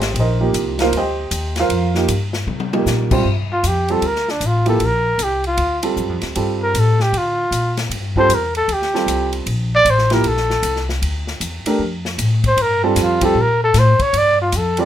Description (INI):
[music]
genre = modal jazz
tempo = 154 BPM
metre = 4/4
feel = swing 64% on 8ths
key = G dorian from 3.3 s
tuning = A4 = 442 Hz
[part]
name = warm upright piano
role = accompaniment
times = 0.0-14.9 s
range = F3 to G5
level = -19 LUFS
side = right 4 dB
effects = none
[part]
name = upright bass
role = bass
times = 0.0-14.9 s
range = Ab1 to D3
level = -20 LUFS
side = left 1 dB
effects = none
[part]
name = swinging big-band drum kit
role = drums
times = 0.0-14.8 s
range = crash cymbal, hi-hat, kick drum, ride cymbal, snare drum, toms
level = -25 LUFS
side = left 2 dB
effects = none
[part]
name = breathy trumpet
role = melody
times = 3.5-14.9 s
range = D4 to D5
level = -17 LUFS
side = equal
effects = none
[sound]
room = moderate studio ambience, RT60 0.4 s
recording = minimal, uncompressed stereo recording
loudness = -15 LUFS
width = side -10 dB against mid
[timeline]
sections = 0.0-3.3 A section; 3.3-14.9 A section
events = drum fill 2.5-2.9; trumpet solo 3.3-14.9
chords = 0.0 F9sus4; 3.3 Gm9